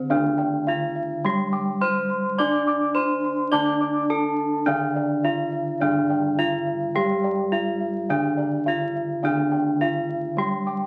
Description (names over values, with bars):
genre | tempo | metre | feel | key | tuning
gamelan | 105 BPM | 4/4 | straight | D slendro | A4 = 442 Hz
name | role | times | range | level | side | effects
gamelan-type bronze metallophone | melody | 0.0-10.9 s | C4-25c to D5 | -27 LUFS | equal | none
gamelan-type bronze metallophone | accompaniment | 0.0-10.9 s | D3 to D4 | -30 LUFS | equal | none
gamelan-type bronze metallophone | arpeggios | 0.0-10.9 s | D5 to D6 | -33 LUFS | equal | none
gamelan-type bossed gongs | bass | 0.0-10.9 s | D2 to D5 | -34 LUFS | equal | none
gamelan-type bossed gongs | arpeggios | 0.1-10.9 s | D5 to D6 | -31 LUFS | equal | none
room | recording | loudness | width
wet studio ambience, RT60 0.5 s | very old 78 rpm record, vinyl crackle | -23 LUFS | mono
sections
0.1-10.9 A section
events
none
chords
none